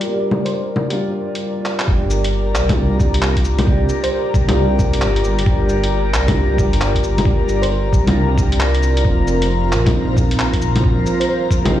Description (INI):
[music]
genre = future garage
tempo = 134 BPM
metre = 4/4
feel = swing 64% on 16ths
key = G minor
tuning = A4 = 440 Hz
[part]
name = felt-muted upright piano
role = accompaniment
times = 0.0-11.8 s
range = F3 to G4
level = -23 LUFS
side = right 2 dB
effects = vintage 12-bit sampler grit, sidechain pumping, analog delay
[part]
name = airy breathy pad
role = sustained chords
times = 0.0-11.8 s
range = G2 to Bb5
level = -22 LUFS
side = left 2 dB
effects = chorus, phaser, sidechain pumping
[part]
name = lo-fi sampler-style drum kit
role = drums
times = 0.0-11.7 s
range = bongos, cabasa, handclaps, hi-hat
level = -22 LUFS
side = left 1 dB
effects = small room ambience
[part]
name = flickering grainy texture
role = texture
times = 0.0-1.4 s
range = D5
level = -36 LUFS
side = left 2 dB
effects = none
[part]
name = bell-like FM electric piano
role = melody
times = 0.5-0.6, 4.0-4.7, 7.6-7.8, 11.2-11.8 s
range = G4 to C5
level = -27 LUFS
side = equal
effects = chorus, analog delay
[part]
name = dark detuned saw bass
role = bass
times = 1.9-11.8 s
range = F1 to C2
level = -18 LUFS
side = equal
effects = tube saturation, sidechain pumping
[part]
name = electronic kick drum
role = drums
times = 1.9-11.6 s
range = none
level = -17 LUFS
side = equal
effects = small room ambience
[sound]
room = light reverb, digital ambience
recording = played on a big sound system in a bare room, large studio reverb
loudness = -14 LUFS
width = side -12 dB against mid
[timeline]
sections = 0.0-1.9 A section; 1.9-11.8 B section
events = filter sweep on drum 0.0-1.9; drum fill 1.7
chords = 0.0 Gm; 9.0 Fsus4